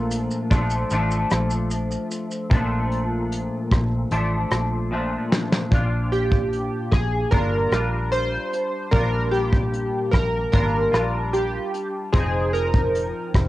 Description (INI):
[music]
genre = indie pop, bedroom pop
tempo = 75 BPM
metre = 4/4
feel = straight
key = Bb major, Bb mixolydian from 5.7 s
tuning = A4 = 438 Hz
[part]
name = semi-hollow electric guitar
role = accompaniment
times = 0.0-13.5 s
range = Bb2 to Ab4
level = -26 LUFS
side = left 1 dB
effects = ensemble chorus, warbly pitch drift, cassette tape
[part]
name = vintage muted fingered electric bass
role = bass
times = 0.0-13.5 s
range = F1 to Bb1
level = -25 LUFS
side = equal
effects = none
[part]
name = soft brush drum kit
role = drums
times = 0.1-13.5 s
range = hi-hat, kick drum, rim click, shaker, snare drum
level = -21 LUFS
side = equal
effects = vintage 12-bit sampler grit, cassette tape
[part]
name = chorused retro synth keys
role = melody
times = 6.1-13.3 s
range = G4 to C5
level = -24 LUFS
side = right 1 dB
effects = ensemble chorus
[sound]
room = light reverb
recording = home recording on cassette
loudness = -20 LUFS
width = side -16 dB against mid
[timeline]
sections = 0.0-5.7 A section; 5.7-13.5 B section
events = drum fill 4.9-5.7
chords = 0.0 Bbmaj7; 5.7 Bb6; 12.1 Fm7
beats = 0.11 0.91 1.71 | 2.51 3.31 4.12 4.92 | 5.72 6.52 7.32 8.13 | 8.93 9.73 10.54 11.34 | 12.14 12.94